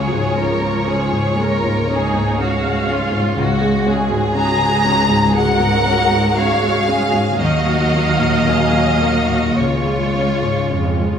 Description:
cinematic, emotional film score for orchestra; 53-61 BPM; 4/4; rubato; Db major; A4 = 440 Hz
warm symphonic violin section; melody; 0.0-11.2 s; Db5 to Bb5; -20 LUFS; left 2 dB
warm symphonic violin section; second line; 0.0-11.2 s; F4 to Db5; -23 LUFS; left 1 dB
dark baby grand piano; accompaniment; 0.0-11.2 s; Db2 to Db4; -20 LUFS; left 1 dB
warm symphonic viola section; accompaniment; 0.0-11.2 s; F3 to F5; -22 LUFS; right 3 dB
concert harp; arpeggios; 0.0-11.2 s; Db3 to F5; -25 LUFS; left 4 dB
warm symphonic cello section; bass; 0.0-11.2 s; Db2 to F2; -23 LUFS; right 3 dB
wet scoring stage reverb, RT60 1.6 s; -14 LUFS; side -7 dB against mid
0.0-11.2 A section
0.0 Db; 3.4 Gbadd9/Db; 7.4 Ebmadd9; 9.6 Db
0.38 1.39 2.39 | 3.38 4.37 5.36 6.38 | 7.41 8.48 9.59 10.71

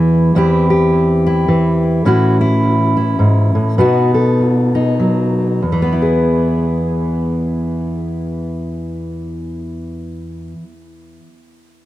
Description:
folk; 92-107 BPM; 3/4; swing 61% on 8ths; E major; A4 = 440 Hz
fingerpicked steel-string acoustic guitar; solo; 0.0-10.9 s; E2 to A4; -13 LUFS; equal; tape echo
light reverb; dry, close 1970s-style studio recording; -12 LUFS; side -14 dB against mid
0.0-5.6 A section; 5.6-9.5 B section
slowing down 2.1-5.6
0.4 C/E; 2.1 A6; 3.8 B; 5.6 E
| 0.36 0.93 1.49 | 2.05 2.62 3.19 | 3.77 4.37 4.99 | 5.63 6.28 6.93 | 7.58 8.22 8.87

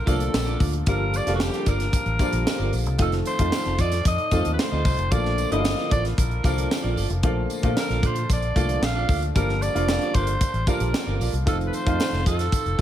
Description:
polished 1980s jazz-funk pop; 113 BPM; 4/4; straight; A4 = 440 Hz
growling alto saxophone; melody; 0.0-12.8 s; F#4 to F5; -28 LUFS; equal; ping-pong delay
clear grand piano; accompaniment; 0.0-12.8 s; C#3 to F4; -28 LUFS; left 1 dB; lush chorus
clean electric guitar; riff; 0.1-12.8 s; F4 to F5; -33 LUFS; right 7 dB; wide subtle chorus
vintage muted fingered electric bass; bass; 0.1-12.8 s; F1 to Bb2; -25 LUFS; equal
tight funk drum kit; drums; 0.1-12.8 s; hi-hat, kick drum, snare drum; -25 LUFS; equal; gated reverb
tambourine; percussion; 0.1-12.6 s; -43 LUFS; left 4 dB
studio reverb; -20 LUFS; side -11 dB against mid
0.0-12.8 A section
0.0 Bbmaj7; 0.9 Gm7; 3.0 F7; 5.1 Bbmaj7; 9.4 Gm7; 11.5 F7
0.34 | 0.87 1.40 1.93 2.46 | 2.99 3.52 4.06 4.59 | 5.12 5.65 6.18 6.71 | 7.24 7.77 8.30 8.83 | 9.36 9.88 10.41 10.94 | 11.47 12.00 12.53

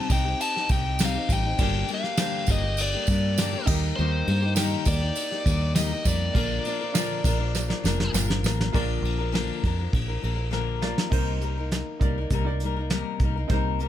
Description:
folk rock and heartland rock; 101 BPM; 4/4; straight; C minor; A4 = 438 Hz
biting lead guitar; melody; 0.0-8.1 s; C5 to A5; -30 LUFS; equal; overdrive
clear baby grand piano; accompaniment; 0.0-13.9 s; D4 to G5; -37 LUFS; right 6 dB
picked old ladder-braced acoustic guitar; accompaniment; 0.0-13.9 s; G2 to Bb4; -30 LUFS; left 7 dB
fingered electric bass; bass; 0.1-13.9 s; F1 to G2; -26 LUFS; equal
soft brush drum kit; drums; 0.1-13.9 s; crash cymbal, hi-hat, kick drum, ride cymbal, snare drum; -27 LUFS; equal
tambourine; percussion; 0.1-8.6 s; -35 LUFS; right 10 dB
little or no reverb; -22 LUFS; side -11 dB against mid
0.0-8.7 A section; 8.7-11.1 B section; 11.1-13.9 C section
drum fill 7.5-8.7, 10.5-11.1
0.0 Cm; 1.6 Gm; 3.7 Eb; 6.4 Bb; 11.1 Cm7
0.40 0.99 | 1.59 2.19 2.78 3.38 | 3.97 4.57 5.16 5.76 | 6.36 6.95 7.55 8.14 | 8.74 9.33 9.93 10.53 | 11.12 11.72 12.31 12.91 | 13.51

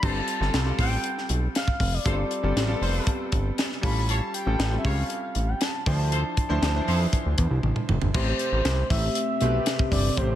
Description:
polished 1980s jazz-funk pop; 118 BPM; 4/4; straight; A4 = 440 Hz
expressive synth lead; melody; 0.0-10.4 s; C5 to B5; -31 LUFS; left 1 dB; chorus, ping-pong delay
warm horn section; second line; 0.0-7.0 s; F4 to C#5; -36 LUFS; left 1 dB; ping-pong delay
clear concert grand piano; accompaniment; 0.0-10.4 s; E3 to C5; -31 LUFS; equal; analog chorus
fat analog bass; bass; 0.0-10.4 s; F1 to F2; -25 LUFS; equal
tight funk drum kit; drums; 0.0-10.3 s; crash cymbal, hi-hat, kick drum, snare drum, toms; -27 LUFS; equal
hollow soft pad; sustained chords; 8.4-10.4 s; C3 to G4; -31 LUFS; equal; chorus
light reverb, small room reverb; -22 LUFS; side -12 dB against mid
0.0-8.1 A section; 8.1-10.4 B section
drum fill 7.6-8.1
0.0 G9sus4; 3.8 A7b13; 5.9 Dm9; 8.1 Am9
| 0.03 0.53 1.04 1.55 | 2.06 2.56 3.07 3.58 | 4.09 4.59 5.10 5.61 | 6.12 6.62 7.13 7.64 | 8.15 8.65 9.16 9.67 | 10.18

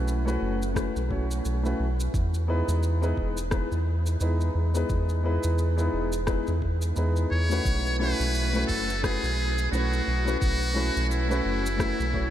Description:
sunset chillout; 87 BPM; 4/4; swing 58% on 16ths; E major; A4 = 443 Hz
warm grand piano; accompaniment; 0.0-12.3 s; G#3 to C#5; -29 LUFS; left 1 dB; auto-pan, tape echo
round analog bass; bass; 0.0-12.3 s; E1 to E2; -26 LUFS; equal
electronic shaker and rim click; drums; 0.1-12.1 s; -39 LUFS; left 1 dB; small room ambience
electronic kick drum; drums; 0.8-12.3 s; -29 LUFS; equal; small room ambience
trumpet with metal mute; melody; 7.3-12.3 s; E4 to C#5; -29 LUFS; equal; tape echo
moderate huge ambient reverb, RT60 7.9 s; dreamy mix soaked in reverb; -24 LUFS; side -11 dB against mid
0.0-12.3 A section
0.0 B9sus4; 2.1 Emaj7; 7.7 B9sus4
0.07 0.76 1.45 | 2.14 2.83 3.52 4.21 | 4.90 5.59 6.28 6.97 | 7.66 8.35 9.04 9.73 | 10.42 11.11 11.80

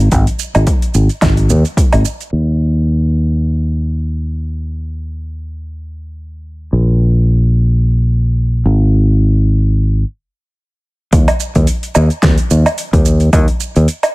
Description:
sunset chillout; 109 BPM; 4/4; swing 56% on 16ths; A4 = 439 Hz
fingered electric bass; bass; 0.0-13.9 s; Ab1 to Eb2; -12 LUFS; equal; tube saturation
deep house drum kit; drums; 0.1-2.4, 11.1-14.1 s; crash cymbal, hi-hat, shaker, snare drum, woodblock; -18 LUFS; right 1 dB; overdrive, studio reverb
electronic kick drum; drums; 0.1-1.9, 11.1-13.5 s; -14 LUFS; equal; overdrive, studio reverb
little or no reverb; low-pass filter; -11 LUFS; side -22 dB against mid
0.0-2.3 A section; 2.3-11.1 B section; 11.1-14.1 C section
filter sweep 2.3-11.1; stop 10.0-11.1
| 0.12 0.67 1.22 1.77 | 2.32 2.87 3.42 3.97 | 4.52 5.07 5.62 6.17 | 6.72 7.28 7.83 8.38 | 8.93 9.48 10.03 10.58 | 11.13 11.68 12.23 12.78 | 13.33 13.88

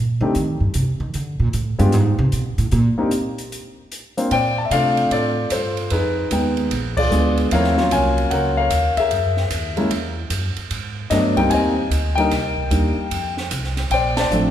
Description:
jazz piano trio; 150 BPM; 4/4; swing 66% on 8ths; A4 = 440 Hz
upright bass; bass; 0.0-14.5 s; A1 to Eb3; -21 LUFS; right 1 dB
warm grand piano; melody; 0.2-14.5 s; F3 to A5; -19 LUFS; left 2 dB
open jazz drum kit; drums; 0.3-14.4 s; crash cymbal, hi-hat, kick drum, ride cymbal, snare drum; -29 LUFS; right 4 dB
wet recital hall reverb, RT60 1.9 s; recorded in a church or concert hall; -17 LUFS; side -10 dB against mid
0.0-4.3 A section; 4.3-14.5 B section
upright bass solo 0.0-4.3; band accent 6.9, 14.1
0.3 Cm; 1.1 Bbmaj7; 1.9 Abm; 2.7 N.C.; 4.3 Bbmaj9; 5.9 Fm7b5; 6.7 Bb7b9; 7.5 Ebm9; 9.1 Gb9; 10.7 Abmaj7; 12.3 Cm7; 13.1 F5; 13.9 Bbmaj9
0.34 0.74 | 1.14 1.53 1.93 2.33 | 2.72 3.12 3.52 3.92 | 4.31 4.71 5.11 5.51 | 5.91 6.31 6.71 7.11 | 7.51 7.91 8.31 8.71 | 9.11 9.51 9.91 10.31 | 10.71 11.11 11.51 11.91 | 12.31 12.71 13.11 13.51 | 13.91 14.31

